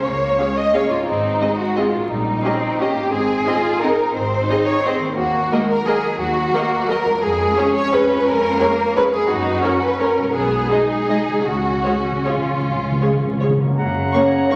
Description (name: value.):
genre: classical, orchestral ballroom waltz.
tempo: 147-188 BPM.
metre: 3/4.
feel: rubato.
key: unclear.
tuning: A4 = 440 Hz.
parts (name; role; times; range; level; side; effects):
rich studio violin section; second line; 0.0-14.6 s; Eb4 to F#5; -21 LUFS; equal; none.
concert harp; arpeggios; 0.0-14.6 s; E#2 to C#5; -33 LUFS; equal; none.
rich studio cello section; bass; 0.0-14.1 s; F#2 to F4; -27 LUFS; equal; none.
rich studio double bass section; bass; 0.0-14.1 s; F#1 to F#2; -31 LUFS; equal; none.
warm studio violin section; melody; 0.4-14.6 s; C#5 to C#6; -32 LUFS; equal; none.
warm studio viola section; accompaniment; 0.4-14.6 s; G#3 to A#4; -26 LUFS; equal; none.
timpani; percussion; 11.5-13.7 s; C#3; -24 LUFS; equal; none.
clear clarinet; second line; 13.8-14.6 s; F#5; -29 LUFS; equal; none.
clear oboe; second line; 13.8-14.6 s; A#5; -28 LUFS; equal; none.
mellow bassoon; accompaniment; 13.8-14.6 s; C#3; -27 LUFS; equal; none.
mellow hollow small flute group; second line; 14.1-14.6 s; A#4 to C#5; -20 LUFS; equal; none.
mellow French horn section; sustained chords; 14.1-14.6 s; C#4 to D#4; -21 LUFS; equal; none.
room: wet concert hall reverb, RT60 1.7 s.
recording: vinyl crackle.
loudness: -19 LUFS.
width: mono.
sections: 0.0-13.8 A section.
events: timpani fill 11.5-13.8.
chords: 0.0 Db; 1.1 Ab; 2.1 Eb7/Bb; 3.1 Ab; 5.2 D#m; 7.2 C#/E#; 9.3 F#; 10.4 G#m/B; 11.5 C#; 13.8 F#.